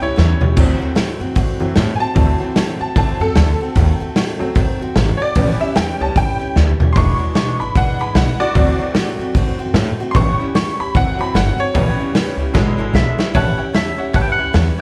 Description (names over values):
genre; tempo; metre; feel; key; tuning
rockabilly; 150 BPM; 4/4; swing 60% on 8ths; unclear; A4 = 440 Hz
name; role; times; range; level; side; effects
honky-tonk upright piano; accompaniment; 0.0-14.8 s; C#3 to C#6; -24 LUFS; equal; none
picked acoustic archtop guitar; accompaniment; 0.0-14.8 s; E2 to F#4; -27 LUFS; equal; none
upright bass; bass; 0.0-14.8 s; E1 to A2; -20 LUFS; equal; none
vintage drum kit; drums; 0.2-14.7 s; hi-hat, kick drum, snare drum, splash cymbal, toms; -20 LUFS; equal; none
twangy electric guitar; melody; 12.9-14.5 s; E5 to G5; -24 LUFS; equal; phaser, slapback echo, digital delay
room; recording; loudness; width
studio ambience; live gig heard through the venue's PA, club ambience; -16 LUFS; mono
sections
0.0-13.3 A section; 13.3-14.8 B section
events
honky-tonk piano solo 0.0-13.3; drum fill 0.2-0.6, 6.6-7.0, 12.5-13.3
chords
0.0 A7 (rootless); 0.6 D7; 3.8 D#dim7; 5.4 A7; 7.0 E7; 8.6 D7; 10.1 A7; 10.9 D7; 11.7 A7; 12.5 E7; 13.3 A7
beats
0.17 | 0.57 0.97 1.37 1.77 | 2.17 2.56 2.96 3.36 | 3.76 4.16 4.56 4.96 | 5.36 5.76 6.16 6.56 | 6.96 7.35 7.75 8.15 | 8.55 8.95 9.35 9.75 | 10.15 10.55 10.95 11.35 | 11.74 12.14 12.54 12.94 | 13.34 13.74 14.14 14.54